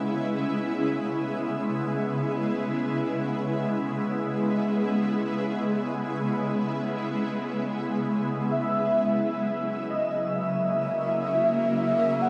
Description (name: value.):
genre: ambient.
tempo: free time.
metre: none.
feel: none.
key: C# dorian.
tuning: A4 = 440 Hz.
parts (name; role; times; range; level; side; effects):
shimmering ambient pad; sustained chords; 0.0-12.3 s; C#3 to E4; -28 LUFS; equal; chorus, built-in reverb, phaser.
warm velvety synth lead; melody; 8.5-12.3 s; D#5 to F#5; -28 LUFS; equal; chorus, diffuse ambient delay.
room: wet shimmer reverb, RT60 8.3 s.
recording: none.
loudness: -27 LUFS.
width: mono.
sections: 0.0-12.3 A section.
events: none.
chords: 0.0 C#m7; 8.5 F#7/C#.